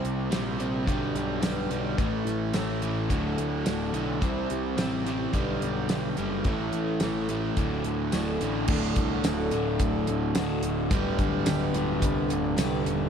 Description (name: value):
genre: classic rock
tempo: 108 BPM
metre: 4/4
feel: straight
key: D mixolydian from 8.7 s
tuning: A4 = 440 Hz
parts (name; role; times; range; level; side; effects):
- picked twelve-string acoustic guitar; accompaniment; 0.0-13.1 s; A2 to C#5; -35 LUFS; left 1 dB; none
- crunchy overdriven guitar; riff; 0.0-13.1 s; D2 to C4; -31 LUFS; left 9 dB; none
- overdriven electric guitar; riff; 0.0-13.1 s; D2 to C4; -31 LUFS; right 10 dB; slapback echo
- fuzz picked electric bass; bass; 0.0-13.1 s; D1 to D2; -33 LUFS; equal; overdrive
- damped 70s drum kit; drums; 0.0-13.0 s; crash cymbal, hi-hat, kick drum, snare drum, tambourine; -30 LUFS; equal; none
room: light reverb, studio ambience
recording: none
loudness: -25 LUFS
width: side -7 dB against mid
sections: 0.0-8.7 A section; 8.7-13.1 B section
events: none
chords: 0.0 C; 0.9 G/B; 2.0 A; 3.1 Dadd9; 4.2 C; 5.3 G/B; 6.5 A; 7.6 Dadd9; 8.7 D; 10.9 G/D